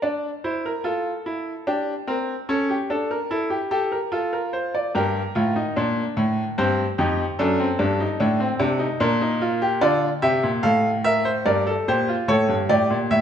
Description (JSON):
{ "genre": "classical, baroque-style 4-part fugue for grand piano", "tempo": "73 BPM", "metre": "3/4", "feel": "straight", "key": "G minor", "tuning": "A4 = 440 Hz", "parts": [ { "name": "clear grand piano", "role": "solo", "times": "0.0-13.2 s", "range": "F2 to F5", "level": "-20 LUFS", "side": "equal", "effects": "none" } ], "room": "moderate recital hall reverb, RT60 1.7 s", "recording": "minimal, uncompressed stereo recording", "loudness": "-20 LUFS", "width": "side -8 dB against mid", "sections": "0.0-13.2 A section", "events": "none", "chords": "0.0 Dm; 1.7 Gmadd11; 2.5 A7/C#; 4.1 Dm/F; 4.9 Gm; 6.6 Cmadd11; 7.4 D7/F#; 9.0 Gm/Bb; 9.8 Dm; 11.5 Gm11; 12.3 A7" }